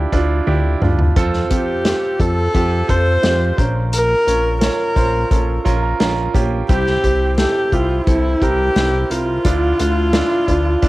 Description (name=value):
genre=piano-driven pop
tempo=87 BPM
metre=4/4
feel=straight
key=F major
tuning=A4 = 440 Hz
part: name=clear baby grand piano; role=accompaniment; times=0.0-10.9 s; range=Bb2 to C6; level=-21 LUFS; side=right 4 dB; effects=cassette tape
part: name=chorused synth bass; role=bass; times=0.0-10.9 s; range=Bb1 to F2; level=-19 LUFS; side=left 1 dB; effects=none
part: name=unplugged drum kit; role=drums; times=0.1-10.9 s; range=hi-hat, kick drum, snare drum, toms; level=-19 LUFS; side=equal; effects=cassette tape
part: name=warm viola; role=melody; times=1.5-10.9 s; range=E4 to C5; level=-18 LUFS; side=left 1 dB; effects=cassette tape
room=light reverb, small room ambience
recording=home recording on cassette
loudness=-14 LUFS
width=side -18 dB against mid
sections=0.0-10.9 A section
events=drum fill 0.5-1.2; grand piano fill 5.3-6.7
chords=0.0 Dmadd9; 1.2 F; 3.6 Bbm; 6.7 C; 9.5 Dmadd9